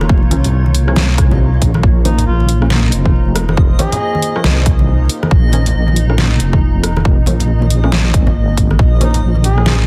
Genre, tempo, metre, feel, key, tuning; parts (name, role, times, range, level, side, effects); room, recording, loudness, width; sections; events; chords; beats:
deep dubstep; 138 BPM; 4/4; swing 61% on 16ths, half-time; Bb minor; A4 = 436 Hz
deep dark ambient pad; sustained chords; 0.0-9.9 s; Bb3 to Eb5; -28 LUFS; equal; chorus, built-in reverb
deep soft wobble bass; bass; 0.0-9.9 s; F1 to C2; -16 LUFS; equal; chorus
dubstep drum kit; drums; 0.0-9.8 s; hi-hat, rim click, snare drum; -21 LUFS; equal; overdrive
congas; percussion; 0.0-9.8 s; -24 LUFS; equal
backwards swelling texture; texture; 0.0-9.9 s; Eb4 to F5; -30 LUFS; equal; built-in reverb
electronic kick drum; drums; 0.1-8.9 s; -15 LUFS; equal; overdrive
filtered dub chord stab; stabs; 0.3-9.7 s; F3 to Db4; -27 LUFS; equal; phaser, lush chorus, dub echo
clear duduk; melody; 2.0-4.4, 9.0-9.8 s; Eb4 to Ab4; -26 LUFS; equal; dub echo
light reverb, digital ambience; dense, heavily limited modern master, vinyl crackle; -13 LUFS; mono
0.0-9.9 A section
0.0 Bbm
| 0.10 0.53 0.96 1.40 | 1.83 2.27 2.70 3.14 | 3.57 4.01 4.44 4.88 | 5.31 5.75 6.18 6.62 | 7.05 7.49 7.92 8.36 | 8.79 9.23 9.66